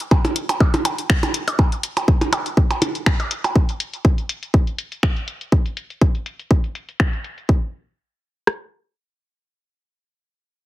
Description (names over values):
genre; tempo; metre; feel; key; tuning
techno; 122 BPM; 4/4; swing 55% on 16ths; none; none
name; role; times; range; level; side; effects
house drum kit; drums; 0.0-7.5 s; finger snaps, hi-hat; -25 LUFS; left 2 dB; low-pass filter on hats, low-pass filter on snare, low-pass filter on room
house drum kit; drums; 0.1-8.6 s; kick drum, rim click; -16 LUFS; equal; none
percussion blips; percussion; 0.1-3.5 s; none; -22 LUFS; right 2 dB; dub echo
room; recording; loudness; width
little or no reverb; heavily compressed radio sound; -18 LUFS; side -15 dB against mid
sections
0.0-7.5 A section; 7.5-10.7 B section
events
filter sweep on drum 0.0-7.5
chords
none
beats
0.11 0.60 1.10 | 1.59 2.08 2.57 3.06 | 3.56 4.05 4.54 5.03 | 5.52 6.01 6.51 7.00 | 7.49 7.98 8.47